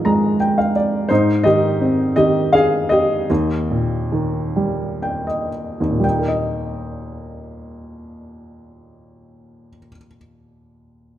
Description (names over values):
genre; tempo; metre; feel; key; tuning
classical, lyrical solo piano; 57-86 BPM; 3/4; rubato; Eb major; A4 = 441 Hz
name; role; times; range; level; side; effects
felt-muted upright piano; solo; 0.0-11.2 s; Eb2 to Bb5; -16 LUFS; equal; none
room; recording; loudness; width
light reverb; none; -16 LUFS; side -12 dB against mid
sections
0.0-6.0 A section; 6.0-11.2 B section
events
felt piano fill 0.0-1.1, 4.6-6.0; slowing down 1.1-6.0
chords
0.0 Fm7/Ab; 1.1 Ab; 3.3 Eb